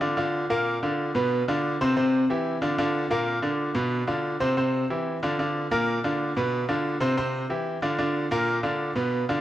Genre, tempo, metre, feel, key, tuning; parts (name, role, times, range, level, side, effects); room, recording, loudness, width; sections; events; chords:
latin; 184 BPM; 4/4; straight; A4 = 440 Hz
bright grand piano; solo; 0.0-9.4 s; Bb2 to C5; -23 LUFS; equal
moderate plate reverb, RT60 3.6 s; -23 LUFS; side -13 dB against mid
0.0-9.4 A section
0.0 Bb; 1.3 Bdim; 2.0 C; 2.6 Bb; 3.9 Bdim; 4.6 C; 5.2 Bb; 6.5 Bdim; 7.2 C; 7.8 Bb